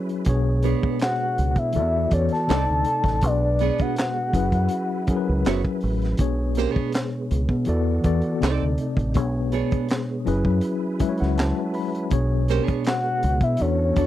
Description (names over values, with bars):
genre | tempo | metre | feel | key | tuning
R&B, neo-soul | 81 BPM | 4/4 | swing 53% on 16ths | B dorian | A4 = 439 Hz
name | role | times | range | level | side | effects
mellow tine electric piano | accompaniment | 0.0-14.1 s | B2 to B5 | -25 LUFS | left 3 dB | medium stereo tremolo
tonewheel organ | sustained chords | 0.0-14.1 s | C3 to B4 | -35 LUFS | right 5 dB | slow rotary speaker, chorus vibrato
crunchy breakbeat drum kit | drums | 0.1-14.1 s | handclaps, hi-hat, kick drum, snare drum | -25 LUFS | right 1 dB | none
deep dub fingered electric bass | bass | 0.3-14.1 s | F#1 to B2 | -23 LUFS | right 1 dB | none
nylon-string guitar | second line | 0.6-14.1 s | B3 to D5 | -26 LUFS | right 13 dB | none
soft octave-layered synth lead | melody | 1.0-5.8, 12.9-14.1 s | C#5 to A5 | -24 LUFS | left 2 dB | chorus, tremolo
room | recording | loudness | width
little or no reverb | dry, close 1970s-style studio recording | -20 LUFS | side -13 dB against mid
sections
0.0-14.1 A section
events
tine electric piano fill 10.6-12.1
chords
0.3 Bm69; 1.7 E9sus4; 2.5 Cm69; 3.2 Bm69; 4.3 F#7sus4; 6.2 Bm69; 7.7 E9sus4; 8.4 Cm69; 9.2 Bm69; 10.3 F#7sus4; 12.1 Bm69